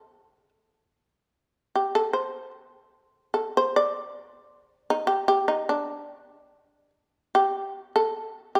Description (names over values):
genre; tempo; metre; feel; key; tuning
japanese traditional, Japanese chamber music; 75 BPM; 2/4; uneven beats, rubato; D in sen; A4 = 441 Hz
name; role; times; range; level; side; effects
shamisen; solo; 0.0-8.6 s; D4 to D5; -25 LUFS; equal; none
room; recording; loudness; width
moderate scoring stage reverb, RT60 1.6 s; none; -26 LUFS; mono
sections
0.0-7.4 A section; 7.4-8.6 B section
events
none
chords
none